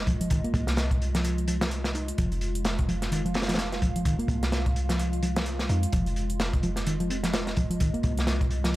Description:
breakbeat, breaks; 128 BPM; 4/4; swing 58% on 16ths; F minor; A4 = 440 Hz
warbly tape-like pad; sustained chords; 0.0-8.8 s; Ab3 to F5; -35 LUFS; right 1 dB; chorus, built-in reverb, sidechain pumping
warm 808-style bass; bass; 0.0-8.8 s; F1 to F2; -30 LUFS; equal
hollow-body short-scale picked electric bass; riff; 0.1-8.8 s; Eb3 to Eb4; -30 LUFS; equal; tube saturation
crunchy breakbeat drum kit; drums; 0.1-8.7 s; hi-hat, kick drum, snare drum; -28 LUFS; equal
electronic hi-hat; drums; 0.2-8.7 s; -42 LUFS; right 1 dB; overdrive
little or no reverb; vinyl crackle; -24 LUFS; side -17 dB against mid
0.0-8.8 A section
0.0 Fm7
| 0.31 0.78 1.24 1.71 | 2.18 2.65 3.12 3.59 | 4.06 4.53 4.99 5.46 | 5.93 6.40 6.87 7.34 | 7.81 8.28 8.74

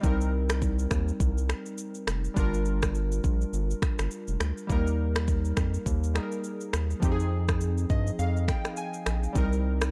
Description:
afrobeats; 103 BPM; 4/4; swing 58% on 16ths; A4 = 441 Hz
warm analog keys; accompaniment; 0.0-9.9 s; F3 to Ab5; -35 LUFS; equal; chorus
round analog bass; bass; 0.0-9.9 s; F1 to G2; -30 LUFS; equal
afro-pop drum kit; drums; 0.0-9.9 s; finger snaps, kick drum, rim click, shaker; -31 LUFS; equal; vintage 12-bit sampler grit
little or no reverb; -28 LUFS; mono
0.0-9.9 A section
synth keys fill 7.6-9.4
0.0 Cm7; 2.4 Gm7; 4.7 Eb; 7.0 Fm7; 9.4 Cm7
| 0.04 0.62 1.20 1.78 | 2.37 2.95 3.53 4.11 | 4.70 5.28 5.86 6.44 | 7.03 7.61 8.19 8.77 | 9.36

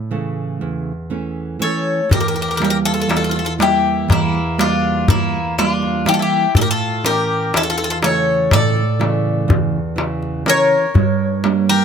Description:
greek folk, Greek bouzouki band; 122 BPM (eighths); 9/8; straight; A4 = 440 Hz
Greek bouzouki; melody; 0.0-11.8 s; E4 to D5; -19 LUFS; left 4 dB
Greek bouzouki; second line; 0.0-11.8 s; A3 to Bb4; -23 LUFS; left 2 dB
nylon-string guitar; accompaniment; 0.0-11.8 s; E2 to D4; -19 LUFS; right 4 dB
darbuka; percussion; 2.1-11.7 s; -18 LUFS; left 1 dB
light reverb; close, detailed microphones; -15 LUFS; side -7 dB against mid
0.0-2.1 A section; 2.1-11.8 B section
0.0 A; 2.1 Edim; 6.6 A; 11.0 Gm
0.12 0.62 1.12 1.61 | 2.11 2.61 3.10 3.60 4.09 4.59 5.08 5.57 6.07 | 6.56 7.05 7.54 8.03 8.52 9.01 9.49 9.98 10.47 | 10.96 11.44

